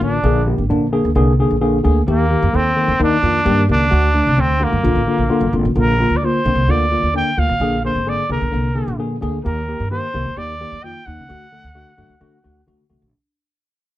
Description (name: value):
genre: uptempo 1960s-style soul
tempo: 130 BPM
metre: 4/4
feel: straight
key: Bb major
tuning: A4 = 441 Hz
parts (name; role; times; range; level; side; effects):
- breathy trumpet; melody; 0.0-12.7 s; Bb3 to G5; -20 LUFS; right 1 dB; slapback echo
- tine electric piano; accompaniment; 0.0-13.1 s; D3 to Bb4; -19 LUFS; left 2 dB; lush chorus
- upright bass; bass; 0.0-13.1 s; G1 to D3; -19 LUFS; equal; none
room: moderate small room reverb, RT60 0.5 s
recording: none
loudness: -14 LUFS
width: side -14 dB against mid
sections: 0.0-5.8 A section; 5.8-13.1 B section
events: fade-out 5.8-13.1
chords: 0.2 Bb7; 2.1 Eb; 3.9 D; 4.8 Bb; 7.6 Bb7; 9.4 Eb; 11.3 D